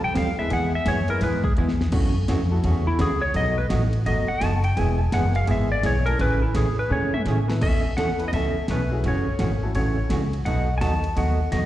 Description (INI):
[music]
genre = country, western swing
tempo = 169 BPM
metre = 4/4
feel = swing 63% on 8ths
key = A major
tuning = A4 = 440 Hz
[part]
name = clean lap steel guitar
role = melody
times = 0.0-11.7 s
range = E4 to A5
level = -27 LUFS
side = left 1 dB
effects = slapback echo
[part]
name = upright bass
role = bass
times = 0.0-11.7 s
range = E1 to A2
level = -23 LUFS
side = equal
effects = none
[part]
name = vintage hollow-body jazz guitar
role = accompaniment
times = 0.1-11.6 s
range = B2 to A4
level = -27 LUFS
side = right 2 dB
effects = slapback echo
[part]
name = pop drum kit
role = drums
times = 0.2-11.6 s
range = crash cymbal, hi-hat, kick drum, ride cymbal, snare drum, toms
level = -28 LUFS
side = equal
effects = none
[part]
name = clear upright piano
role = accompaniment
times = 0.4-3.6, 6.1-10.7 s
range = G#3 to B4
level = -33 LUFS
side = left 3 dB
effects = slapback echo
[sound]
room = little or no reverb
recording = live gig heard through the venue's PA, recital hall reverb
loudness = -20 LUFS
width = side -14 dB against mid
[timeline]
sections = 0.0-7.6 A section; 7.6-11.7 B section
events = electric slide guitar solo 0.0-7.6; drum fill 1.6-1.9, 6.9-7.6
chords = 0.0 Fadd9; 0.5 E; 1.9 F#m7; 3.3 B7; 4.8 E; 6.2 Amaj7; 7.6 Aadd9; 9.0 F#m7; 10.5 B7